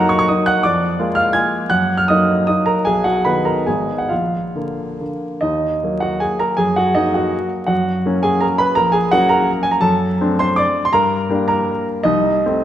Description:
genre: classical, romantic triple-time dance for piano with dotted rhythms.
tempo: 129-179 BPM.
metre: 3/4.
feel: rubato.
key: Eb minor.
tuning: A4 = 440 Hz.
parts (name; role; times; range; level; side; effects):
clear baby grand piano; solo; 0.0-12.6 s; Ab1 to Ab6; -15 LUFS; equal; none.
room: wet concert hall reverb, RT60 2.4 s.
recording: minimal, uncompressed stereo recording, vinyl crackle.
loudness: -15 LUFS.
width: side -11 dB against mid.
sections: 0.0-5.4 A section; 5.4-12.6 B section.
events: none.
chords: 0.0 Ebm/Gb; 0.6 Bb7/F; 1.7 Ebm/Gb; 2.9 B; 3.7 Abm; 4.1 Bb; 5.4 Ebm; 6.6 Ebm/Gb; 7.7 Gb; 8.8 Gb/Bb; 9.8 D7/F#; 10.9 Gm; 12.1 Adim/C.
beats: 0.27 | 0.63 0.98 1.35 | 1.71 2.09 2.48 | 2.86 3.25 3.67 | 4.11 4.56 5.01 | 5.43 5.83 6.22 | 6.59 6.96 7.33 | 7.68 8.04 8.43 | 8.78 9.12 9.48 | 9.83 10.21 10.60 | 10.95 11.31 11.70 | 12.06 12.47.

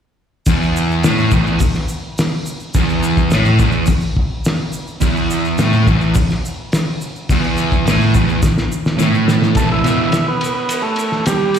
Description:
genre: garage rock duo or trio.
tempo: 106 BPM.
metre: 4/4.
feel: straight.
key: E minor.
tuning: A4 = 441 Hz.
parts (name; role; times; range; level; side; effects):
fuzz guitar; riff; 0.5-10.1 s; E2 to E3; -15 LUFS; equal; distortion, slapback echo.
cloth-damped thuddy drum kit; drums; 0.5-11.6 s; hi-hat, kick drum, ride cymbal, snare drum; -17 LUFS; equal; none.
egg shaker; percussion; 0.5-11.6 s; none; -33 LUFS; right 2 dB; none.
overdriven combo organ; melody; 9.6-11.6 s; G3 to A4; -17 LUFS; right 3 dB; slapback echo.
room: light reverb, small room ambience.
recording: live gig heard through the venue's PA, recital hall reverb.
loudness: -14 LUFS.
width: side -8 dB against mid.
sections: 0.5-9.6 A section; 9.6-11.6 B section.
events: drum fill 8.4-9.6.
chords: 0.5 Esus4; 9.6 Em.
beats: | 0.48 1.05 1.61 2.18 | 2.75 3.32 3.88 4.45 | 5.02 5.59 6.16 6.72 | 7.29 7.86 8.43 9.00 | 9.57 10.14 10.71 11.27.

